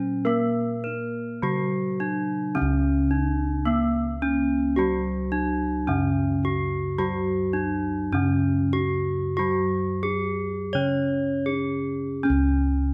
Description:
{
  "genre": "Javanese gamelan",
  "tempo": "75-109 BPM",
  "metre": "4/4",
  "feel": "straight",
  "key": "C# pelog barang",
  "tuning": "A4 = 439 Hz",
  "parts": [
    { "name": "gamelan-type bronze metallophone", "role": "melody", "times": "0.0-12.9 s", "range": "A#3+20c to C#5", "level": "-28 LUFS", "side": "equal", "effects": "none" },
    { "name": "gamelan-type bronze metallophone", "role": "accompaniment", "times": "0.0-12.3 s", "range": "C#3 to C#4", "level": "-31 LUFS", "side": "equal", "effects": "none" },
    { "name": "gamelan-type bossed gongs", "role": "bass", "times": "0.0-12.9 s", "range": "C#2 to A#4+20c", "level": "-30 LUFS", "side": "equal", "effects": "none" }
  ],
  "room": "wet recital hall reverb, RT60 1.5 s",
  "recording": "none",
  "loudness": "-25 LUFS",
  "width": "mono",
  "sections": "0.0-2.6 A section; 2.6-12.3 B section",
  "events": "none",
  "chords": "none"
}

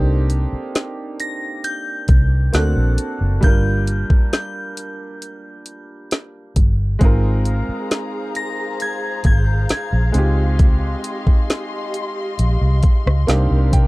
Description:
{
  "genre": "contemporary R&B",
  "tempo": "67 BPM",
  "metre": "4/4",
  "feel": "straight",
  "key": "C minor",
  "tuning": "A4 = 440 Hz",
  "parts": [
    { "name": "clear grand piano", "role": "accompaniment", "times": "0.0-13.9 s", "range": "G3 to G5", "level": "-26 LUFS", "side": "right 2 dB", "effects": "none" },
    { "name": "vintage muted fingered electric bass", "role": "bass", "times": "0.0-13.9 s", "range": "F#1 to C3", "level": "-17 LUFS", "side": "equal", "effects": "none" },
    { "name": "smooth R&B drum kit", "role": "drums", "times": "0.3-13.9 s", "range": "hi-hat, kick drum, rim click, snare drum", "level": "-15 LUFS", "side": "equal", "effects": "none" },
    { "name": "glassy synth bell", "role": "melody", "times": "1.2-13.3 s", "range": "F#6 to Bb6", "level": "-28 LUFS", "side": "left 1 dB", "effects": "chorus, digital delay" },
    { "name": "dark studio string section", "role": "sustained chords", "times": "7.0-13.9 s", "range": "G4 to C6", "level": "-28 LUFS", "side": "left 2 dB", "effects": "none" }
  ],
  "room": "little or no reverb",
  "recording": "dark, warm production",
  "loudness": "-16 LUFS",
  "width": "side -22 dB against mid",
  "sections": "0.0-13.9 A section",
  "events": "grand piano fill 12.8-13.9",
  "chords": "0.0 Cm9; 2.5 D7b13; 3.4 Gm7; 7.0 Ab69; 10.1 Dbmaj9#11; 13.3 Cm9"
}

